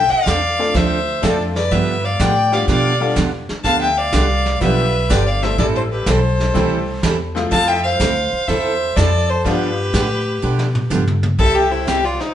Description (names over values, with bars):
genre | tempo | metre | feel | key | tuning
country, western swing | 124 BPM | 4/4 | swing 68% on 8ths | unclear | A4 = 442 Hz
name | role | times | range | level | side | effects
clear fiddle | melody | 0.0-12.3 s | Eb4 to A5 | -20 LUFS | left 4 dB | none
dark fiddle | second line | 0.0-12.3 s | G4 to F5 | -24 LUFS | right 2 dB | none
upright bass | bass | 0.0-12.2 s | G1 to B2 | -20 LUFS | equal | none
picked steel-string acoustic guitar | accompaniment | 0.3-12.0 s | C3 to A4 | -22 LUFS | right 4 dB | none
vintage brush drum kit | drums | 0.3-12.3 s | brushed snare drum, hi-hat, kick drum, ride cymbal, snare drum, toms | -25 LUFS | equal | none
tack piano | accompaniment | 0.6-9.8 s | F3 to A4 | -24 LUFS | left 4 dB | none
room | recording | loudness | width
wet large studio reverb, RT60 0.9 s | band playing live in one room, nothing above 10.7 kHz | -15 LUFS | side -10 dB against mid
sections
0.0-11.4 A section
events
drum fill 10.4-11.4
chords
0.0 F6; 1.7 G7; 5.6 Am7; 7.5 Fmaj7; 9.5 G7; 11.4 C